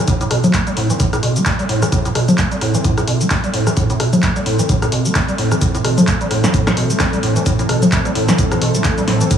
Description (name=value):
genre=acid house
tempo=130 BPM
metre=4/4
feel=swing 57% on 16ths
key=A minor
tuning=A4 = 441 Hz
part: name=ethereal airy pad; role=texture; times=0.0-9.4 s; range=C4 to C6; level=-26 LUFS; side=left 2 dB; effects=ensemble chorus, built-in reverb, sidechain pumping
part: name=acid bass, square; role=riff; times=0.1-9.4 s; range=A2 to C4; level=-18 LUFS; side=right 1 dB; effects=lush chorus, sidechain pumping, analog delay
part: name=electronic kick drum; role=drums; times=0.1-9.4 s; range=none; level=-20 LUFS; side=right 1 dB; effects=none
part: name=punchy analog drum machine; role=drums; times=0.1-9.4 s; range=congas, handclaps, hi-hat, rim click, shaker, snare drum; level=-18 LUFS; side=left 1 dB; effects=none
part: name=warm analog pad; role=sustained chords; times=5.6-9.4 s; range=A2 to A4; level=-21 LUFS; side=right 1 dB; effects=chorus, sidechain pumping
room=light reverb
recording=heavily compressed radio sound, multiband compression, studio reverb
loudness=-13 LUFS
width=side -8 dB against mid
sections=0.0-9.4 A section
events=fade-in on ambient pad 0.0-9.4; filter sweep on acid bass 0.0-9.4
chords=0.0 Am